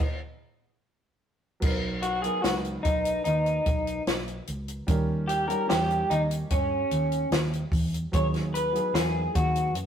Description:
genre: indie pop, bedroom pop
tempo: 74 BPM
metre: 4/4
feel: straight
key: B major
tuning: A4 = 438 Hz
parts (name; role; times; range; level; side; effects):
- warm upright piano; accompaniment; 0.0-9.9 s; F#3 to B4; -35 LUFS; right 2 dB; none
- compact cocktail drum kit; drums; 0.0-9.9 s; crash cymbal, hi-hat, kick drum, snare drum; -29 LUFS; equal; none
- vintage muted fingered electric bass; bass; 1.6-9.9 s; B1 to G2; -30 LUFS; equal; none
- electric guitar through a small old amp; accompaniment; 2.0-9.7 s; C#4 to C#5; -27 LUFS; equal; vibrato effect
room: moderate stone room reverb, RT60 1.0 s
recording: rough rehearsal-room recording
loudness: -24 LUFS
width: side -8 dB against mid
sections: 0.0-1.6 A section; 1.6-9.9 B section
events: stop 0.0-1.6; clean electric guitar solo 1.6-9.9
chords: 0.0 N.C.; 1.6 Bmaj7; 4.9 D#7; 8.1 G#m7/D#

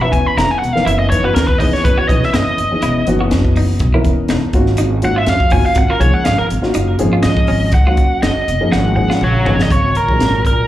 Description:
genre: electric jazz fusion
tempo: 122 BPM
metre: 4/4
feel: swing 53% on 16ths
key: G# minor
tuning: A4 = 440 Hz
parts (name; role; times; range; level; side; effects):
- biting lead guitar; melody; 0.0-10.7 s; A#4 to B5; -18 LUFS; equal; overdrive, plate reverb, slapback echo, tape echo
- dark concert grand piano; accompaniment; 0.0-10.6 s; E3 to B4; -19 LUFS; left 1 dB; plate reverb, slapback echo
- semi-hollow electric guitar; stabs; 0.0-9.6 s; C#4 to F#4; -25 LUFS; right 3 dB; lush chorus, plate reverb, slapback echo
- upright bass; bass; 0.0-10.6 s; E1 to G#2; -17 LUFS; equal; none
- crisp fusion drum kit; drums; 0.1-10.6 s; hi-hat, kick drum, snare drum, toms; -18 LUFS; equal; none
- dark bass clarinet; second line; 9.3-10.7 s; A#2 to D#3; -22 LUFS; equal; none
room: light reverb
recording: live gig heard through the venue's PA, club reverb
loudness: -12 LUFS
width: side -13 dB against mid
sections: 0.0-9.7 A section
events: lead electric guitar solo 0.0-9.7; drum fill 8.7-9.7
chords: 0.0 F#13sus4; 4.5 G#13sus4; 9.7 G#9sus4

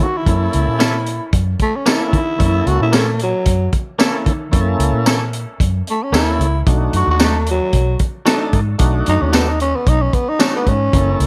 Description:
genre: straight-eighth soul blues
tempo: 112 BPM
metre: 4/4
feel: straight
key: unclear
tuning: A4 = 440 Hz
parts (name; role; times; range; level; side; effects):
- growling tenor saxophone; melody; 0.0-11.2 s; F#3 to F#4; -21 LUFS; equal; slapback echo
- tonewheel organ; accompaniment; 0.0-11.3 s; A3 to A4; -24 LUFS; equal; slow rotary speaker, overdrive, plate reverb
- vintage muted fingered electric bass; bass; 0.0-11.3 s; F#1 to D#3; -20 LUFS; equal; none
- crunchy breakbeat drum kit; drums; 0.0-11.3 s; hi-hat, kick drum, snare drum, tambourine; -19 LUFS; equal; none
- direct-recorded clean electric guitar; stabs; 0.8-10.6 s; F#3 to A4; -27 LUFS; equal; spring reverb, plate reverb
room: light reverb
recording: none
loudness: -16 LUFS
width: mono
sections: 0.0-11.3 A section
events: tenor saxophone solo 0.0-11.3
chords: 0.0 F#7#9; 6.7 B7#9

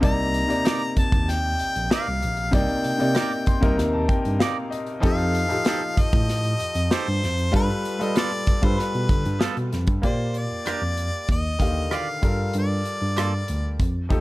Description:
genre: lush 1970s-style soul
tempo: 96 BPM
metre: 4/4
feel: straight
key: C dorian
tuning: A4 = 441 Hz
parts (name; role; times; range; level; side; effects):
- clear harmonica; melody; 0.0-13.8 s; B4 to Bb5; -28 LUFS; left 1 dB; none
- clear baby grand piano; accompaniment; 0.0-14.2 s; C3 to C6; -27 LUFS; left 1 dB; none
- tine electric piano; bass; 0.0-14.2 s; Bb1 to G3; -26 LUFS; equal; medium tremolo
- modern studio drum kit; drums; 0.0-14.2 s; hi-hat, kick drum, rim click, snare drum; -23 LUFS; equal; none
- clean electric guitar; riff; 0.6-13.3 s; Bb3 to D5; -31 LUFS; right 7 dB; none
room: small room ambience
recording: none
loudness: -20 LUFS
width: side -19 dB against mid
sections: 0.0-10.0 A section; 10.0-14.2 B section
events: grand piano fill 3.2-5.0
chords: 0.0 Cm9; 5.0 F9; 7.5 G9; 10.0 Bb6; 11.3 Ebmaj9; 12.2 Gm9

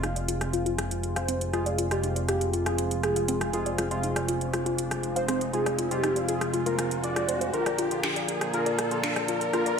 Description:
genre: melodic techno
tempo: 120 BPM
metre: 4/4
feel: straight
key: F dorian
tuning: A4 = 439 Hz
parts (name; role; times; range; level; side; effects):
- dark analog pad; sustained chords; 0.2-9.8 s; F4 to Bb5; -35 LUFS; equal; chorus, phaser
- woody wave-folded pluck; arpeggios; 0.0-9.7 s; C4 to F5; -32 LUFS; left 2 dB; chorus, tape echo
- sync-sweep polysynth; stabs; 0.0-9.8 s; C3 to F4; -32 LUFS; equal; chorus, tape echo
- fat analog bass; bass; 0.0-9.8 s; F1 to Bb1; -34 LUFS; equal; none
- house drum kit; drums; 0.0-9.8 s; finger snaps, hi-hat, rim click; -32 LUFS; right 1 dB; small room ambience
- riser; sound effects; 2.6-9.8 s; none; -36 LUFS; equal; none
- fat analog lead; melody; 1.2-9.8 s; G4 to D5; -32 LUFS; equal; analog chorus, dub echo
room: moderate digital room reverb, RT60 1.2 s, digital ambience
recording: high-pass filter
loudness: -25 LUFS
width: side -6 dB against mid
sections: 0.0-9.8 A section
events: build-up 0.0-9.8; filter sweep on synth pluck 0.0-9.8; filter sweep on analog polysynth 0.0-9.8; riser 2.6-9.8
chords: 0.0 Fm; 7.5 Bb

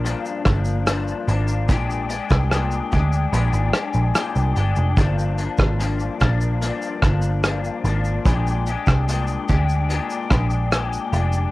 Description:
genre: indie pop, bedroom pop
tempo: 73 BPM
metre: 4/4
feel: straight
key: unclear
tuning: A4 = 440 Hz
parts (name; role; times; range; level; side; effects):
- electric guitar through a small old amp; accompaniment; 0.0-11.5 s; G2 to G4; -25 LUFS; left 5 dB; ensemble chorus, warbly pitch drift, cassette tape
- vintage muted picked electric bass; bass; 0.0-11.5 s; F1 to D2; -20 LUFS; right 1 dB; none
- unplugged drum kit; drums; 0.1-11.5 s; hi-hat, kick drum, rim click, shaker; -21 LUFS; right 1 dB; cassette tape
room: little or no reverb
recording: home recording on cassette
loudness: -18 LUFS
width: side -18 dB against mid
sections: 0.0-11.5 A section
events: none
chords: 0.0 Gm7; 1.7 Bb13; 5.0 Gm7; 8.3 Bb13

